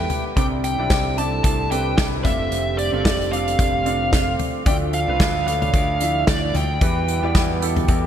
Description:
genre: piano-driven pop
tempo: 112 BPM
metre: 4/4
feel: swing 56% on 16ths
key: unclear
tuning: A4 = 440 Hz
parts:
  - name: biting lead guitar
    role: melody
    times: 0.0-8.1 s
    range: D5 to A5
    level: -24 LUFS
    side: equal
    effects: overdrive
  - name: dark French horn section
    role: second line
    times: 0.0-8.1 s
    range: B2 to A4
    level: -31 LUFS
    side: right 6 dB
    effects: none
  - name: clear baby grand piano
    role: accompaniment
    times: 0.0-8.1 s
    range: C3 to F5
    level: -26 LUFS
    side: equal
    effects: analog chorus
  - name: tonewheel organ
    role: sustained chords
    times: 0.0-8.1 s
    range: D3 to G4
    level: -34 LUFS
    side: equal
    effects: none
  - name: modern bright picked electric bass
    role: bass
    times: 0.0-8.1 s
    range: F1 to E2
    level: -25 LUFS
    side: equal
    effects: none
  - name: unplugged drum kit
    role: drums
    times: 0.1-8.0 s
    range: hi-hat, kick drum, snare drum, toms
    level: -21 LUFS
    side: equal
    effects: none
room: moderate lush hall reverb, RT60 2.7 s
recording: bright 1980s-style digital production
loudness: -18 LUFS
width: side -9 dB against mid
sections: 0.0-8.1 A section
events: none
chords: 0.4 Cadd9; 2.2 F6; 4.7 Dmadd9; 6.8 Em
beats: | 0.37 0.91 1.44 1.98 | 2.52 3.05 3.59 4.13 | 4.67 5.20 5.74 6.28 | 6.81 7.35 7.89

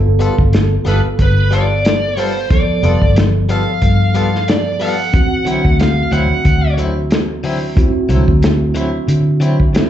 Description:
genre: straight-eighth soul blues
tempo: 91 BPM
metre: 4/4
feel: swing 55% on 16ths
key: unclear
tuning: A4 = 440 Hz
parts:
  - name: mellow tine electric piano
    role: accompaniment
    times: 0.0-9.9 s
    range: E3 to A4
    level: -20 LUFS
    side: right 4 dB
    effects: medium stereo tremolo, slapback echo
  - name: vintage muted fingered electric bass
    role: bass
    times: 0.0-9.9 s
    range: F1 to D3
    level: -15 LUFS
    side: equal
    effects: none
  - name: direct-recorded clean electric guitar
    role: stabs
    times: 0.2-9.6 s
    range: D3 to A4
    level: -22 LUFS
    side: left 5 dB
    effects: tremolo, slapback echo, analog delay
  - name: warm soul drum kit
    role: drums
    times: 0.2-9.9 s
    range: hi-hat, kick drum, snare drum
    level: -16 LUFS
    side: equal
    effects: none
  - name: smooth overdriven lead guitar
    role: melody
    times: 0.9-6.7 s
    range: B4 to F#5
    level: -19 LUFS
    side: equal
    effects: slapback echo
room: little or no reverb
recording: live gig heard through the venue's PA, club reverb, nothing above 7.9 kHz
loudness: -12 LUFS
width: side -11 dB against mid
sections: 0.0-9.9 A section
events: none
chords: 0.0 G9; 5.1 D9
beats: 0.53 1.19 1.84 | 2.50 3.16 3.82 4.48 | 5.13 5.79 6.45 7.11 | 7.77 8.43 9.09 9.74

